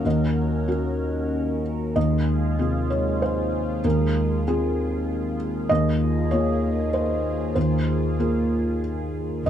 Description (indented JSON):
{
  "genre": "neoclassical piano and strings",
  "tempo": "95 BPM",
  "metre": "3/4",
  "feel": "rubato",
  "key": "Eb dorian",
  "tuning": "A4 = 436 Hz",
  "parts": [
    { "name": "felt-muted upright piano", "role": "accompaniment", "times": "0.0-9.5 s", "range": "Eb2 to Eb5", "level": "-21 LUFS", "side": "equal", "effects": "none" },
    { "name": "phased analog pad", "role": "sustained chords", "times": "0.0-9.5 s", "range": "Ab3 to Bb4", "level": "-31 LUFS", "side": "right 3 dB", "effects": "phaser, chorus" }
  ],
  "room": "light reverb",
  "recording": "dark, warm production",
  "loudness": "-21 LUFS",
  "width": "side -9 dB against mid",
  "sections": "0.0-9.5 A section",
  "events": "none",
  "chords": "0.0 Ebm7; 2.0 Eb13sus4"
}